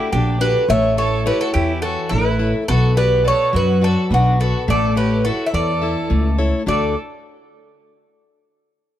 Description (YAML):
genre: greek folk, Greek bouzouki band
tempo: 211 BPM (eighths)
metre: 7/8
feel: straight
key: D major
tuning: A4 = 440 Hz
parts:
  - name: Greek bouzouki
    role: melody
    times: 0.0-6.9 s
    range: F#4 to E5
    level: -20 LUFS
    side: right 1 dB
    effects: none
  - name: rich violin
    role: second line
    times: 0.0-6.9 s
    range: D4 to C#5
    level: -26 LUFS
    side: right 2 dB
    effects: none
  - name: picked plugged-in steel-string acoustic guitar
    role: accompaniment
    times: 0.0-6.9 s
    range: D3 to E5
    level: -22 LUFS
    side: left 3 dB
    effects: none
  - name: upright bass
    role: bass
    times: 0.1-6.9 s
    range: A1 to F#2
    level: -19 LUFS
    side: equal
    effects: none
room: light reverb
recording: none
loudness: -15 LUFS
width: side -12 dB against mid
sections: 0.0-6.7 A section; 6.7-8.7 B section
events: none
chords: 0.0 D; 0.7 A; 2.7 Bm; 4.7 A; 6.7 D